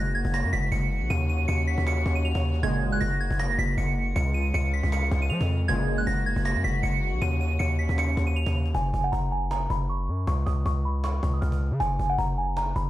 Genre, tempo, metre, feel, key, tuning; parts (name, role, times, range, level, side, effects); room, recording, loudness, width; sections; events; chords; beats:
hip hop, trap; 157 BPM; 4/4; half-time; F# major; A4 = 440 Hz
soft synth bell; melody; 0.0-12.9 s; F#5 to E#7; -30 LUFS; right 2 dB; chorus, tremolo, low-pass filter
warm symphonic string section; sustained chords; 0.0-8.7 s; C#3 to F#4; -35 LUFS; left 1 dB
hard-hitting 808-style bass; bass; 0.0-12.9 s; F#1 to E#3; -25 LUFS; equal
cajon; drums; 0.1-12.9 s; -34 LUFS; equal
resonant sweep polysynth; stabs; 2.6-3.0, 5.7-6.1 s; C#2 to G#3; -30 LUFS; right 3 dB; chorus
small room ambience; dark, warm production; -23 LUFS; side -15 dB against mid
0.0-8.7 A section; 8.7-12.9 B section
filter sweep on synth bell 8.7-12.9
0.0 F#add9; 1.1 D#m7; 2.6 F#add9; 4.2 C#; 5.7 F#add9; 7.2 D#m7; 8.7 F#5; 10.3 N.C.; 11.8 F#5
0.34 0.72 | 1.10 1.48 1.87 2.25 | 2.63 3.01 3.40 3.78 | 4.16 4.54 4.92 5.31 | 5.69 6.07 6.45 6.83 | 7.22 7.60 7.98 8.36 | 8.74 9.13 9.51 9.89 | 10.27 10.66 11.04 11.42 | 11.80 12.19 12.57